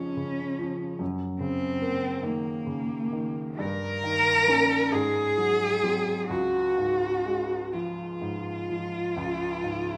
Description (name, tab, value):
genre	classical, romantic duo for cello and grand piano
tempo	42-49 BPM (dotted quarters)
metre	12/8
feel	rubato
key	Db major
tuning	A4 = 440 Hz
part	warm cello	melody	0.0-10.0 s	Bb3 to Bb4	-28 LUFS	equal	none
part	clear baby grand piano	accompaniment	0.0-10.0 s	Db2 to Db4	-33 LUFS	equal	none
room	wet recital hall reverb, RT60 1.4 s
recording	none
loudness	-27 LUFS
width	mono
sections	0.0-10.0 A section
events	none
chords	0.0 Db/F; 1.0 Ebm7/Gb; 3.6 Eb7/G; 4.9 Ab7; 6.3 Db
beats	| 1.00 2.25 3.60 4.93 | 6.30 7.73 9.16